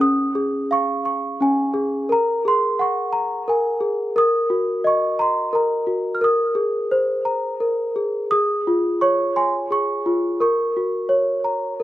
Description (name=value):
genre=children's music, lullaby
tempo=87 BPM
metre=3/4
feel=straight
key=Db major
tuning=A4 = 438 Hz
part: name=celesta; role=solo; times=0.0-11.8 s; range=Db4 to F6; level=-18 LUFS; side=equal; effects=slapback echo
room=little or no reverb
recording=recorded outdoors, with no room sound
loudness=-18 LUFS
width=side -14 dB against mid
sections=0.0-11.8 A section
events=none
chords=0.0 Db; 2.1 Gbadd9; 4.2 Ebm; 6.2 Abadd9; 8.3 Db; 10.4 Gb